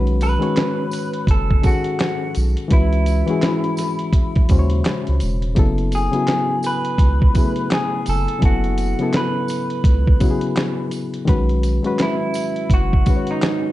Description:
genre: lo-fi hip hop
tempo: 84 BPM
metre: 4/4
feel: swing 61% on 16ths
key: F# dorian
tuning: A4 = 439 Hz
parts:
  - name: barky reed electric piano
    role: accompaniment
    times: 0.0-13.7 s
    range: C#3 to C#5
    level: -22 LUFS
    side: left 3 dB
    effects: overdrive, cassette tape, low-pass filter, plate reverb
  - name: soft dub sub bass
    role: bass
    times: 0.0-13.0 s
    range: E1 to D#2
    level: -19 LUFS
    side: equal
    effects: none
  - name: dusty soul sampler-style drum kit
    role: drums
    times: 0.1-13.6 s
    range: handclaps, hi-hat, kick drum, snare drum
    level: -18 LUFS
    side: equal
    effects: none
  - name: electric guitar through a small old amp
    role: melody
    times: 0.2-13.7 s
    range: D#4 to B4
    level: -24 LUFS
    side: right 2 dB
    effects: spring reverb, low-pass filter, plate reverb
  - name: tambourine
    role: percussion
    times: 0.2-13.3 s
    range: none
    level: -40 LUFS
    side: right 4 dB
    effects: none
room: light reverb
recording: dark, warm production, nothing above 11.0 kHz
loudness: -16 LUFS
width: side -15 dB against mid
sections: 0.0-13.7 A section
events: none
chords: 0.0 B7; 2.7 C#m7; 5.6 F#m11; 11.3 B

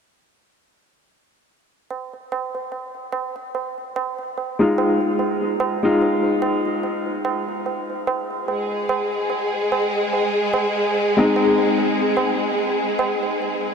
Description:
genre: trip hop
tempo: 73 BPM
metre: 4/4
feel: swing 55% on 16ths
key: F minor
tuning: A4 = 438 Hz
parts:
  - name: tabla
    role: percussion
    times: 1.9-13.7 s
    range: none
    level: -26 LUFS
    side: right 4 dB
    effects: none
  - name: bright upright piano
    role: accompaniment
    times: 4.6-12.4 s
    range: Ab3 to F4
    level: -20 LUFS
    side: left 1 dB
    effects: tremolo, low-pass filter, tape echo
  - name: rich symphonic violin section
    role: sustained chords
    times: 8.5-13.7 s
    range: Ab3 to Ab4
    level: -21 LUFS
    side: left 1 dB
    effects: none
room: wet huge ambient reverb, RT60 7.4 s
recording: dreamy mix soaked in reverb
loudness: -19 LUFS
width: side -6 dB against mid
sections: 1.9-13.7 A section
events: none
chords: 1.9 Fm7; 8.5 Ab

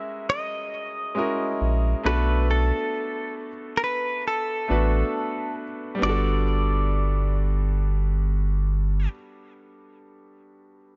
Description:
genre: contemporary R&B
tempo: 68 BPM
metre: 4/4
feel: swing 58% on 16ths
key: G major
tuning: A4 = 440 Hz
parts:
  - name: direct-recorded clean electric guitar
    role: melody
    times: 0.0-9.1 s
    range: A4 to E5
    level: -30 LUFS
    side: equal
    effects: none
  - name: clear baby grand piano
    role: accompaniment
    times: 0.0-11.0 s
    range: G3 to B4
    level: -32 LUFS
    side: equal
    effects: none
  - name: warm sub bass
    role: bass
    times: 1.6-9.1 s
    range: G1 to B1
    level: -24 LUFS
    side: equal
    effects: none
room: small room ambience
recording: nothing above 7.7 kHz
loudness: -25 LUFS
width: mono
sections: 0.0-6.0 A section; 6.0-9.5 B section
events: none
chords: 0.0 F#7; 2.0 Bm7; 6.0 Gmaj7

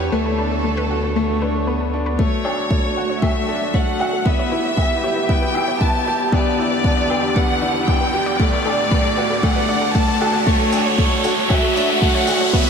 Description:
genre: piano and strings electronica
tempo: 116 BPM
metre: 4/4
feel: straight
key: unclear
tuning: A4 = 440 Hz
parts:
  - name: clear chamber violin section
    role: melody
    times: 0.0-12.7 s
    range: A4 to A5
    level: -21 LUFS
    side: equal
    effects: tape echo
  - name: dark string quartet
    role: sustained chords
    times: 0.0-12.7 s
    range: D2 to D5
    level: -26 LUFS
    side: right 3 dB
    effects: low-pass filter
  - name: bright upright piano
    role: riff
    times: 0.0-12.7 s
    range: A3 to G4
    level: -22 LUFS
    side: left 2 dB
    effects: tape echo
  - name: warm sub bass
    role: bass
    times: 0.0-2.2 s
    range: D2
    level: -24 LUFS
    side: equal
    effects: sidechain pumping
  - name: analog pluck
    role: arpeggios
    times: 0.1-12.6 s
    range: A4 to F#5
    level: -30 LUFS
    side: equal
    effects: chorus, sidechain pumping, tape echo
  - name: electronic kick drum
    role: drums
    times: 2.2-12.6 s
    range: none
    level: -19 LUFS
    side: equal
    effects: none
  - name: riser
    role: sound effects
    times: 5.4-12.7 s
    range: none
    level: -25 LUFS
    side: equal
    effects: none
  - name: woodblock and shaker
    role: drums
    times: 2.4-12.4 s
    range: none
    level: -32 LUFS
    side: left 1 dB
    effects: none
room: wet huge ambient reverb, RT60 8.0 s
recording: dreamy mix soaked in reverb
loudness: -16 LUFS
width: side -6 dB against mid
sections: 0.0-2.2 A section; 2.2-12.7 B section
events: build-up 2.2-12.7; filter sweep on synth arpeggio sound 2.2-12.7; riser 5.4-12.7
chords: 0.1 Bm7/D; 2.2 Dmaj7; 4.3 C#m7b5; 6.3 Em7; 8.4 Bm7/D; 10.5 Dmaj7

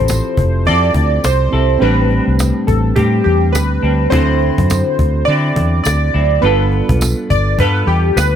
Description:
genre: indie pop, bedroom pop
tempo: 104 BPM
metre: 4/4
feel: swing 60% on 16ths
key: unclear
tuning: A4 = 441 Hz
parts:
  - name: warm analog keys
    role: melody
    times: 0.0-8.4 s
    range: G4 to D5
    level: -17 LUFS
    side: right 1 dB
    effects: phaser, wide subtle chorus
  - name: semi-hollow electric guitar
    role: accompaniment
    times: 0.0-8.4 s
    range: A2 to A4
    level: -20 LUFS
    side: left 3 dB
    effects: lush chorus, vibrato effect
  - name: tine electric piano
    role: accompaniment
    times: 0.0-8.4 s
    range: B3 to B4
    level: -23 LUFS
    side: right 6 dB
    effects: none
  - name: vintage muted fingered electric bass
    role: bass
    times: 0.0-8.4 s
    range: F1 to D3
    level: -15 LUFS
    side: equal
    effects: none
  - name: cajon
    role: drums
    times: 0.1-8.3 s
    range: none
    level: -18 LUFS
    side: equal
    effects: none
  - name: tambourine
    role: percussion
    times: 0.1-8.3 s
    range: none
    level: -26 LUFS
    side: right 7 dB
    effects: none
room: small room ambience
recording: none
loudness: -12 LUFS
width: side -9 dB against mid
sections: 0.0-8.4 A section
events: none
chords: 0.0 Fmaj7; 1.8 Am11; 4.1 D9; 6.4 G9

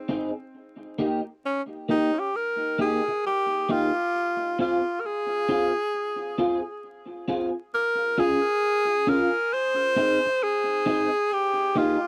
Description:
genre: reggae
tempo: 67 BPM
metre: 4/4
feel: swing 64% on 16ths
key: unclear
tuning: A4 = 440 Hz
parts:
  - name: clear tenor saxophone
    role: melody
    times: 0.0-12.1 s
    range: C4 to C5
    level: -26 LUFS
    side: equal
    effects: tape echo
  - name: electric guitar at the edge of break-up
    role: accompaniment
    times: 0.1-12.0 s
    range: Bb3 to Ab4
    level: -29 LUFS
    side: equal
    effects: ensemble chorus, tape echo
room: light reverb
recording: dry, close 1970s-style studio recording, vinyl crackle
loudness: -25 LUFS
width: mono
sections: 0.0-7.7 A section; 7.7-12.1 B section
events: none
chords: 0.0 Ab; 0.5 Eb; 4.1 Fm; 7.7 Db; 9.5 Ab; 11.3 Eb

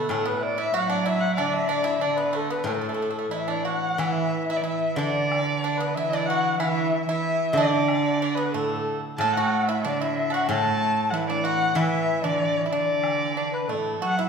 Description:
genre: chinese traditional, Chinese chamber ensemble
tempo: 93 BPM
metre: 2/4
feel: rubato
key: A zhi mode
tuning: A4 = 437 Hz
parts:
  - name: dark erhu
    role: melody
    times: 0.0-14.3 s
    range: A4 to A5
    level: -28 LUFS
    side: left 1 dB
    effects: none
  - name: dark cello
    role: second line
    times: 0.0-14.3 s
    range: A2 to A3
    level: -29 LUFS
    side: right 4 dB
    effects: none
  - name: pipa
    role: second line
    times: 0.0-14.3 s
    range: A3 to A4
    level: -30 LUFS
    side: right 4 dB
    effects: none
  - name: xiao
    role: second line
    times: 0.0-14.3 s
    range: A4 to A5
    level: -28 LUFS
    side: left 4 dB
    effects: none
  - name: steel-string zither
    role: accompaniment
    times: 0.0-13.7 s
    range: A2 to E3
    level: -30 LUFS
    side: right 1 dB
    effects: none
  - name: woodblock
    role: percussion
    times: 0.1-13.8 s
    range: none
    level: -37 LUFS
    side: left 3 dB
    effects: none
room: wet recital hall reverb, RT60 1.5 s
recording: recorded in a church or concert hall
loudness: -22 LUFS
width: side -6 dB against mid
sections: 0.0-4.0 A section; 4.0-14.3 B section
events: none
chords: none

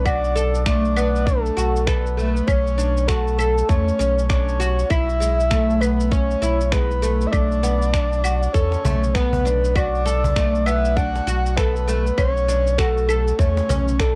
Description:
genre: organic downtempo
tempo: 99 BPM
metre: 4/4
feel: swing 59% on 16ths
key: B minor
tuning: A4 = 441 Hz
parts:
  - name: breathy flute-like synth lead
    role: melody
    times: 0.0-14.2 s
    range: A4 to F#5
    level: -25 LUFS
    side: equal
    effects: chorus, cassette tape, tape echo
  - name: oud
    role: arpeggios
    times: 0.0-14.2 s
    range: G#3 to A4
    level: -27 LUFS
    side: equal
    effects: cassette tape, analog delay
  - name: warm sub bass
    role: bass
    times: 0.0-14.2 s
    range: B1 to E2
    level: -24 LUFS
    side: equal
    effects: sidechain pumping
  - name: electronic claves, cabasa and finger snaps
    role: drums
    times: 0.1-14.1 s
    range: none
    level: -32 LUFS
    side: equal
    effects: none
  - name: electronic kick drum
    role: drums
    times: 0.1-14.1 s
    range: none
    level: -23 LUFS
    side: equal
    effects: none
  - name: cajon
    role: percussion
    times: 7.6-13.8 s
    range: none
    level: -30 LUFS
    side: equal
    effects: none
room: moderate booth ambience, RT60 0.3 s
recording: home recording on cassette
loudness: -20 LUFS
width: mono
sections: 0.0-14.2 A section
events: none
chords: 0.0 Bm7; 2.5 Dmaj7/B; 4.9 Amaj9/B; 7.3 Bm7; 12.2 Dmaj7/B

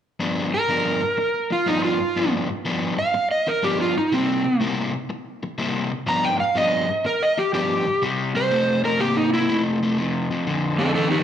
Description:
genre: blues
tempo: 123 BPM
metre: 4/4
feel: swing 68% on 8ths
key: unclear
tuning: A4 = 440 Hz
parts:
  - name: crunchy overdriven guitar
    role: riff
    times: 0.2-11.2 s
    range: F2 to E4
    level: -24 LUFS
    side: left 2 dB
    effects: none
  - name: overdriven slide guitar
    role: melody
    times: 0.5-11.2 s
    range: C4 to Bb5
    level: -21 LUFS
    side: right 2 dB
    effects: slapback echo
room: light reverb, digital ambience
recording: live gig heard through the venue's PA, club reverb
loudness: -19 LUFS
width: side -9 dB against mid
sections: 0.2-8.0 A section; 8.0-11.2 B section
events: none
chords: 0.2 G7; 4.1 C7; 6.1 G7; 8.0 C5; 10.0 F5

